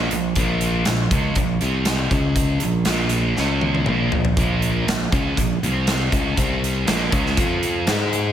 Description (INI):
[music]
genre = hard rock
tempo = 120 BPM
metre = 4/4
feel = straight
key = Bb minor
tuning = A4 = 440 Hz
[part]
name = sludgy distorted guitar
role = riff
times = 0.0-8.3 s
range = Bb2 to Ab4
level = -21 LUFS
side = right 1 dB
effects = overdrive
[part]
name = modern bright fingered electric bass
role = bass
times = 0.0-8.3 s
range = Bb1 to Ab2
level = -24 LUFS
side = equal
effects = none
[part]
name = big rock drum kit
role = drums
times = 0.1-8.2 s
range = hi-hat, kick drum, snare drum, toms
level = -23 LUFS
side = equal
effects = none
[sound]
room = light reverb, small room reverb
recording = none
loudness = -18 LUFS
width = side -10 dB against mid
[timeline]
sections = 0.0-8.3 A section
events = drum fill 3.4-4.4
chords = 0.0 Bbm; 1.6 C5; 2.1 Db5; 2.6 Bb5; 3.4 Db5; 3.9 Bbm; 5.6 C5; 6.1 Db5; 6.4 C5; 6.9 Bbm; 7.4 F5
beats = | 0.37 0.87 1.37 1.87 | 2.37 2.87 3.37 3.87 | 4.37 4.87 5.38 5.88 | 6.38 6.88 7.38 7.88